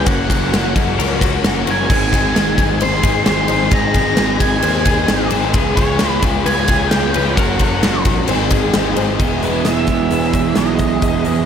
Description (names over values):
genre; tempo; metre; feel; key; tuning
rock, shoegaze and dream pop; 131 BPM; 4/4; straight; unclear; A4 = 440 Hz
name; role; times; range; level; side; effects
octave-fuzz lead guitar; melody; 0.0-11.5 s; Db5 to C6; -22 LUFS; right 2 dB; distortion, analog delay
soft string machine; sustained chords; 0.0-11.5 s; E4 to Db6; -27 LUFS; equal; ensemble chorus
twelve-string electric guitar; arpeggios; 0.0-11.5 s; Gb4 to E5; -26 LUFS; left 9 dB; lush chorus, analog delay
crunchy overdriven guitar; riff; 0.0-11.5 s; E2 to Ab4; -22 LUFS; right 12 dB; reverse reverb
overdriven electric guitar; riff; 0.0-11.5 s; E2 to Bb4; -22 LUFS; left 10 dB; lush chorus
fuzz picked electric bass; bass; 0.0-11.5 s; E1 to E2; -20 LUFS; equal; overdrive
huge arena drum kit; drums; 0.1-11.4 s; crash cymbal, hi-hat, kick drum, ride cymbal, snare drum; -17 LUFS; equal; none
room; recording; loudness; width
light reverb, studio ambience; none; -13 LUFS; side -8 dB against mid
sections
0.0-9.2 A section; 9.2-11.5 B section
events
none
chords
0.1 Gb; 1.9 Ab; 5.5 Db7; 7.4 Gb; 8.3 Ab6; 9.2 Emaj7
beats
| 0.07 0.53 0.98 1.44 | 1.90 2.35 2.81 3.27 | 3.72 4.18 4.64 5.09 | 5.55 6.01 6.46 6.92 | 7.38 7.83 8.29 8.74 | 9.20 9.66 10.11 10.57 | 11.03